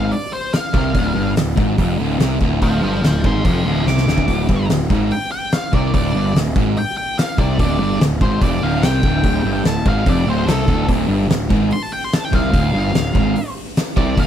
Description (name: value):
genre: blues rock power trio and southern rock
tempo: 145 BPM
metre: 4/4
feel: straight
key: D minor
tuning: A4 = 440 Hz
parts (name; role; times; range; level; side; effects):
- octave-fuzz lead guitar; melody; 0.0-14.3 s; A4 to D6; -24 LUFS; equal; distortion
- thick fuzz guitar; riff; 0.0-14.3 s; D2 to C3; -19 LUFS; equal; distortion
- fuzz picked electric bass; bass; 0.0-14.3 s; D1 to C2; -20 LUFS; equal; overdrive
- oversized low-tuned drum kit; drums; 0.1-14.3 s; hi-hat, kick drum, snare drum; -20 LUFS; equal; none
room: studio ambience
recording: none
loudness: -15 LUFS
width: side -10 dB against mid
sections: 0.0-14.3 A section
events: lead electric guitar solo 0.0-14.3; drum fill 3.9-4.3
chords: 0.0 Dm